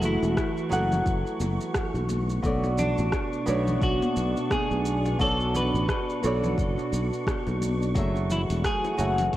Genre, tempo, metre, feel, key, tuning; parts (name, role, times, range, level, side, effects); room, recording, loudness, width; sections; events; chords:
sunset chillout; 87 BPM; 4/4; swing 58% on 16ths; A4 = 440 Hz
clean electric guitar; melody; 0.0-9.4 s; D4 to B4; -30 LUFS; equal; ping-pong delay
nylon-string guitar; accompaniment; 0.0-9.4 s; F#3 to G#5; -30 LUFS; equal; auto-pan
lush unison pad; sustained chords; 0.0-9.4 s; B2 to F#4; -32 LUFS; right 1 dB; chorus
sustaining fretless electric bass; bass; 0.0-9.4 s; E1 to B1; -27 LUFS; equal
deep house drum kit; drums; 0.0-9.4 s; hi-hat, rim click, shaker; -34 LUFS; equal
congas and bongos; percussion; 0.0-9.4 s; -35 LUFS; left 1 dB
wind-like tuned noise texture; texture; 0.0-9.4 s; C#6; -41 LUFS; equal; built-in reverb
electronic kick drum; drums; 0.4-9.4 s; -30 LUFS; equal
moderate lush hall reverb, RT60 2.5 s; worn, warbling old tape, cassette tape, warbly pitch drift; -23 LUFS; side -14 dB against mid
0.0-9.4 A section
0.0 F#m7; 2.1 Bm7; 8.0 F#m7